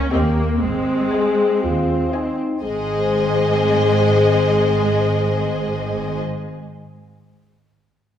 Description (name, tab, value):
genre	cinematic, playful, whimsical film cue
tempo	117-126 BPM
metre	4/4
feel	straight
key	Ab major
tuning	A4 = 440 Hz
part	rich studio viola section	accompaniment	0.0-6.2 s	Ab3 to Db4	-24 LUFS	left 1 dB	none
part	rich studio cello section	bass	0.0-6.2 s	Ab2 to C4	-23 LUFS	right 2 dB	none
part	rich studio violin section	melody	0.1-6.2 s	Eb5 to Ab5	-28 LUFS	left 4 dB	none
part	warm studio violin section	second line	0.1-6.2 s	Ab4 to Eb5	-25 LUFS	left 3 dB	none
part	mellow French horn section	sustained chords	0.1-6.2 s	Bb3 to Ab4	-21 LUFS	left 2 dB	none
part	rich studio double bass section	bass	0.1-6.2 s	Ab1 to Eb2	-25 LUFS	right 1 dB	none
room	wet scoring stage reverb, RT60 1.8 s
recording	heard from further back in the room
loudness	-16 LUFS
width	side -9 dB against mid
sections	0.0-2.6 A section; 2.6-6.5 B section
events	none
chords	0.1 Eb; 0.6 Ab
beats	0.11 | 0.61 1.12 1.63 2.13 | 2.63 3.11 3.59 4.08 | 4.55 5.04 5.51 5.99